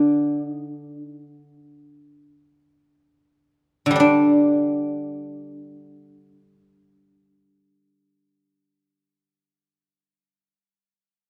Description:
chinese traditional, Chinese solo plucked strings; free time; A4 = 440 Hz
guzheng; solo; 0.0-10.5 s; D3 to D5; -21 LUFS; equal
wet recital hall reverb, RT60 1.7 s; -20 LUFS; mono
0.0-4.0 A section; 4.0-9.9 B section
slowing down 0.0-4.0
free time

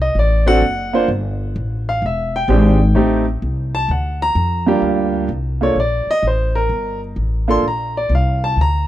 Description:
jazz piano trio; 128 BPM; 4/4; swing 67% on 8ths; G minor; A4 = 439 Hz
clear grand piano; melody; 0.0-8.9 s; G2 to C6; -17 LUFS; right 1 dB
upright bass; bass; 0.0-8.9 s; E1 to F2; -18 LUFS; equal
little or no reverb; dry, close 1970s-style studio recording; -15 LUFS; side -13 dB against mid
0.0-4.8 A section; 4.8-8.9 A section
grand piano solo 0.0-8.9
0.0 D7; 1.1 Gsus2; 2.0 E7alt; 3.0 Am7b5; 3.9 Bb6/D; 4.8 Gm9
0.15 0.62 | 1.09 1.56 2.02 2.49 | 2.96 3.43 3.89 4.36 | 4.83 5.30 5.77 6.24 | 6.70 7.17 7.64 8.11 | 8.58

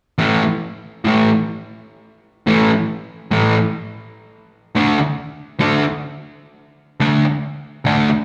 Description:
rock; 106 BPM; 4/4; straight; A4 = 440 Hz
fuzz guitar; riff; 0.2-8.1 s; A2 to D4; -18 LUFS; equal; distortion, slapback echo
light reverb; live gig heard through the venue's PA, club reverb; -18 LUFS; mono
0.2-8.2 A section
0.2 A5; 4.7 D5
| 0.19 0.76 1.33 1.90 | 2.47 3.04 3.61 4.17 | 4.74 5.31 5.87 6.44 | 7.00 7.57

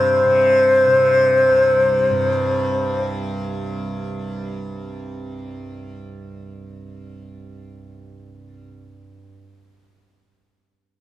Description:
indian classical, Hindustani; free time; A4 = 440 Hz
hollow bansuri; melody; 0.0-3.0 s; C5; -14 LUFS; left 1 dB
tanpura; drone; 0.0-9.3 s; C2 to C3; -26 LUFS; right 2 dB
light reverb; close, detailed microphones; -15 LUFS; side -14 dB against mid
0.0-2.3 A section
free time

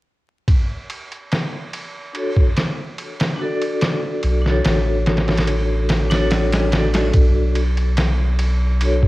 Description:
trip hop; 72 BPM; 4/4; straight; B minor; A4 = 440 Hz
trip hop sampler-style drum kit; drums; 0.5-9.1 s; kick drum, ride cymbal, snare drum; -20 LUFS; equal; cassette tape
vibraphone with hard mallets; accompaniment; 2.1-9.1 s; D4 to D5; -23 LUFS; left 1 dB; tremolo, low-pass filter, tape echo
soft dub sub bass; bass; 4.2-9.1 s; A1 to B1; -18 LUFS; equal
digital ambience; home recording on cassette, vinyl crackle; -16 LUFS; side -19 dB against mid
0.5-7.1 A section; 7.1-9.1 B section
filter sweep on vibraphone 7.1-9.1
0.5 Bm7 (rootless); 7.1 Bm7
| 0.48 1.31 2.14 2.98 | 3.81 4.64 5.48 6.31 | 7.14 7.98 8.81

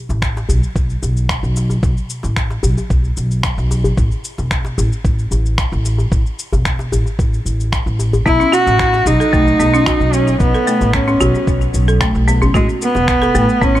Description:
organic downtempo; 112 BPM; 4/4; straight; A4 = 438 Hz
upright bass; bass; 0.1-13.8 s; E1 to B1; -17 LUFS; equal; sidechain pumping
electronic shaker and finger snaps; drums; 0.1-13.8 s; -25 LUFS; left 1 dB
djembe; percussion; 0.1-13.5 s; -23 LUFS; left 1 dB
electronic kick drum; drums; 0.2-13.7 s; -18 LUFS; equal
clear cello; melody; 8.3-13.8 s; G#3 to F#4; -15 LUFS; right 1 dB; ping-pong delay
folk marimba with hard mallets; arpeggios; 8.3-13.8 s; A3 to A4; -18 LUFS; equal; ping-pong delay
light reverb, studio ambience; -13 LUFS; side -13 dB against mid
0.0-13.8 A section
0.0 Asus2; 4.0 A5; 8.3 B5; 12.5 A5
0.23 0.76 1.30 | 1.83 2.37 2.90 3.44 | 3.98 4.51 5.05 5.58 | 6.12 6.65 7.19 7.72 | 8.26 8.80 9.33 9.87 | 10.40 10.94 11.47 12.01 | 12.55 13.08 13.62

